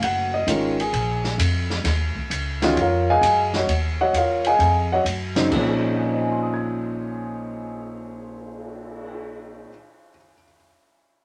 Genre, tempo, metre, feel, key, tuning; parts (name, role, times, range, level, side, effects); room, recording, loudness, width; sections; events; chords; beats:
modal jazz; 131 BPM; 4/4; swing 68% on 8ths; Bb minor; A4 = 442 Hz
warm concert grand piano; accompaniment; 0.0-10.7 s; Ab2 to Ab6; -24 LUFS; equal
upright bass; bass; 0.0-9.6 s; Gb1 to Gb2; -28 LUFS; equal
open jazz drum kit; drums; 0.0-9.1 s; crash cymbal, cymbal swell, hi-hat, kick drum, ride cymbal, snare drum; -32 LUFS; equal
moderate studio reverb, RT60 0.6 s; -22 LUFS; mono
0.0-5.5 A section; 5.5-9.2 B section
0.0 Ebm11; 5.5 Bbm11
| 0.01 0.47 0.93 1.39 | 1.84 2.30 2.76 3.22 | 3.68 4.13 4.59 5.05 | 5.51 5.97 6.42 6.88 | 7.34 7.80 8.26 8.71